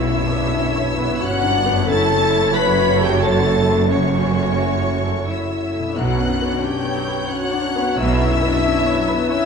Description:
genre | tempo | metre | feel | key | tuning
cinematic, emotional film score for orchestra | 90 BPM | 3/4 | rubato | B minor | A4 = 440 Hz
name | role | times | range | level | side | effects
rich studio violin section | melody | 0.0-9.5 s | C#6 to B6 | -27 LUFS | left 2 dB | none
warm studio violin section | second line | 0.0-9.5 s | C#5 to B5 | -25 LUFS | left 4 dB | none
rich studio viola section | accompaniment | 0.0-9.5 s | F#3 to C#5 | -25 LUFS | right 3 dB | none
warm concert grand piano | accompaniment | 0.0-9.5 s | B1 to C#5 | -25 LUFS | left 3 dB | none
warm French horn section | sustained chords | 0.0-9.5 s | C#4 to B4 | -22 LUFS | left 4 dB | none
concert harp | arpeggios | 0.0-9.5 s | F#2 to C#5 | -32 LUFS | left 9 dB | none
rich studio cello section | bass | 0.0-8.5 s | F#2 to B2 | -25 LUFS | right 3 dB | none
rich studio double bass section | bass | 0.0-8.5 s | F#1 to B1 | -24 LUFS | right 4 dB | none
room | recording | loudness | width
moderate scoring stage reverb, RT60 1.9 s | dark, warm production | -16 LUFS | side -6 dB against mid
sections
0.0-9.5 A section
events
none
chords
0.0 Bmadd9; 1.9 F#m7; 6.0 Bmadd9

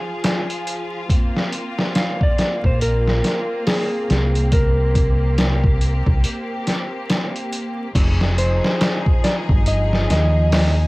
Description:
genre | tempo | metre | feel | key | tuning
trip hop | 70 BPM | 4/4 | swing 60% on 16ths | F minor | A4 = 440 Hz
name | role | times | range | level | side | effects
clean lap steel guitar | melody | 0.0-10.9 s | Ab4 to F5 | -24 LUFS | equal | tape echo
bright symphonic string section | sustained chords | 0.0-10.9 s | F3 to Ab4 | -27 LUFS | equal | cassette tape
trip hop sampler-style drum kit | drums | 0.2-10.8 s | crash cymbal, hi-hat, kick drum, snare drum | -19 LUFS | equal | vintage 12-bit sampler grit, cassette tape
deep dub fingered electric bass | bass | 2.6-10.9 s | F1 to Eb2 | -18 LUFS | equal | none
room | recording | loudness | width
light reverb | home recording on cassette, vinyl crackle | -16 LUFS | side -22 dB against mid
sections
0.0-7.9 A section; 7.9-10.9 B section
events
break 6.2-7.9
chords
0.0 Fm; 1.1 Bbsus2; 7.9 Fm7

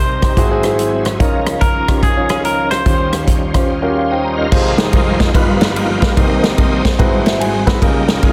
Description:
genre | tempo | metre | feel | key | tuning
uptempo gospel | 145 BPM | 4/4 | swing 65% on 8ths | Ab major | A4 = 441 Hz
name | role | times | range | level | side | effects
clean electric guitar | melody | 0.0-3.2 s | Ab4 to C5 | -21 LUFS | equal | none
warm concert grand piano | accompaniment | 0.0-8.3 s | F1 to B5 | -20 LUFS | equal | none
bright tonewheel organ | sustained chords | 0.0-8.3 s | F2 to F5 | -23 LUFS | equal | slow rotary speaker, overdrive, chorus vibrato
swinging big-band drum kit | drums | 0.2-8.3 s | crash cymbal, hi-hat, kick drum, ride cymbal, rim click, snare drum | -17 LUFS | equal | soft clipping on snare
room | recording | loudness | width
light reverb, studio reverb | dense, heavily limited modern master | -14 LUFS | mono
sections
0.0-4.5 A section; 4.5-8.3 B section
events
grand piano fill 3.7-4.5, 7.0-7.8; tonewheel organ solo 4.5-8.3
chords
0.4 Abaug7; 1.2 Db69; 2.9 Eb13; 4.5 Fm9; 5.3 G7alt; 6.2 Cm7; 7.0 Ab7alt; 7.8 Db69

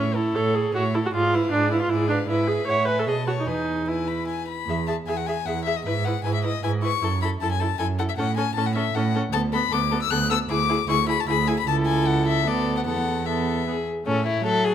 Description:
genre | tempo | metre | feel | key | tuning
quick classical-period movement for string quartet | 154 BPM | 3/4 | straight | E major, A major from 9.3 s | A4 = 443 Hz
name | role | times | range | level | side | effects
warm violin | melody | 0.0-14.7 s | A4 to F#6 | -27 LUFS | left 10 dB | none
dark violin | second line | 0.0-14.7 s | C#4 to E5 | -29 LUFS | left 3 dB | none
warm viola | accompaniment | 0.0-14.7 s | F#3 to C#5 | -26 LUFS | right 2 dB | none
rich cello | bass | 0.0-14.4 s | C#2 to B2 | -26 LUFS | right 4 dB | none
room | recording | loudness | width
moderate recital hall reverb, RT60 1.7 s | close, detailed microphones | -21 LUFS | side -9 dB against mid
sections
0.0-4.7 A section; 4.7-14.1 B section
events
none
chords
0.0 A; 1.1 G#dim7; 2.3 E/G#; 2.7 F#m7/A; 3.1 B7; 3.5 E; 5.9 E/G#; 7.0 F#m7; 8.2 A6; 9.3 Bm7/D; 10.5 E7/D; 11.7 A/C#; 12.5 Bm7/D; 12.9 Esus4; 14.1 A

